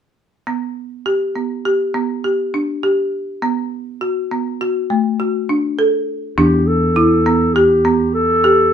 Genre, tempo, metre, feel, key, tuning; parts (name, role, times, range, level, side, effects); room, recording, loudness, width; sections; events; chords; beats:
contemporary instrumental, chamber music in an uneven meter; 102 BPM; 5/4; straight; E minor; A4 = 440 Hz
folk marimba with medium hard mallets; arpeggios; 0.5-8.7 s; A3 to A4; -16 LUFS; equal
warm clarinet; melody; 6.4-8.7 s; G4 to A4; -16 LUFS; equal
fretless electric bass; bass; 6.4-8.7 s; E2; -18 LUFS; equal
light reverb; minimal, uncompressed stereo recording; -15 LUFS; side -8 dB against mid
0.5-6.4 A section; 6.4-8.7 B section
0.5 N.C.; 3.4 Bm7; 6.4 Em7
| 0.47 1.06 1.65 2.24 2.83 | 3.42 4.01 4.61 5.20 5.79 | 6.38 6.97 7.56 8.15